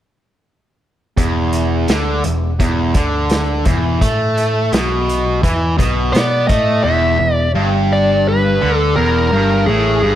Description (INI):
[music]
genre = blues rock power trio and southern rock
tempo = 85 BPM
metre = 4/4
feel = straight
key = unclear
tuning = A4 = 439 Hz
[part]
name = sludgy distorted guitar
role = riff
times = 1.2-10.2 s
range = E2 to B3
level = -17 LUFS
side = equal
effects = overdrive
[part]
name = overdriven picked electric bass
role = bass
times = 1.2-10.2 s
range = E1 to B2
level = -19 LUFS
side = equal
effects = none
[part]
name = vintage drum kit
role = drums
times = 1.2-6.7 s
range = hi-hat, kick drum, snare drum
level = -19 LUFS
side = equal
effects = none
[part]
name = bluesy overdriven lead guitar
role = melody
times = 6.1-10.2 s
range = G#4 to E5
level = -16 LUFS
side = equal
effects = distortion
[sound]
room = light reverb, small room ambience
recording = none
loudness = -13 LUFS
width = side -11 dB against mid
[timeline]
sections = 1.2-6.8 A section; 6.8-10.2 B section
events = none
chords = 1.2 Dsus2/E; 4.0 B7(no3); 6.8 E7(no3)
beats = | 1.17 1.88 2.59 3.30 | 4.01 4.72 5.43 6.14 | 6.84 7.55 8.25 8.96 | 9.66